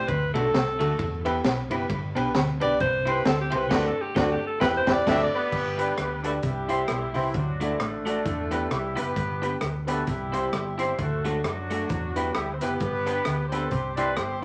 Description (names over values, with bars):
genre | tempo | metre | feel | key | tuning
ska | 132 BPM | 4/4 | swing 58% on 8ths | G major | A4 = 440 Hz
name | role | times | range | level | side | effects
warm alto saxophone | melody | 0.0-5.5 s | F#4 to E5 | -29 LUFS | equal | none
dark upright piano | stabs | 0.0-14.4 s | A3 to E5 | -33 LUFS | equal | none
fingered electric bass | bass | 0.0-14.4 s | E1 to F#2 | -36 LUFS | equal | none
clean electric guitar | riff | 0.1-14.3 s | F#2 to F#3 | -37 LUFS | equal | tape echo
crunchy breakbeat drum kit | drums | 0.1-14.3 s | crash cymbal, hi-hat, kick drum, ride cymbal, rim click, snare drum | -32 LUFS | equal | none
clean electric guitar | accompaniment | 0.3-14.4 s | A3 to C5 | -35 LUFS | equal | tape echo
warm horn section | melody | 5.1-14.4 s | D3 to D5 | -32 LUFS | equal | none
room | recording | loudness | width
wet studio reverb, RT60 0.7 s | vinyl crackle | -26 LUFS | mono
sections
0.0-5.5 A section; 5.5-14.4 B section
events
alto saxophone solo 0.0-5.5; band accent 3.7-5.5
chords
0.1 D; 1.0 Em; 1.9 G; 2.8 C; 3.7 D; 4.6 Em; 5.1 D; 5.5 G; 6.4 C; 7.3 D; 8.3 Em; 9.2 G; 10.1 C; 11.0 D; 11.9 Em; 12.8 G; 13.7 C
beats
| 0.09 0.54 0.99 1.45 | 1.90 2.35 2.81 3.26 | 3.71 4.16 4.62 5.07 | 5.53 5.98 6.43 6.89 | 7.34 7.80 8.25 8.71 | 9.16 9.62 10.07 10.53 | 10.98 11.44 11.89 12.35 | 12.80 13.26 13.71 14.17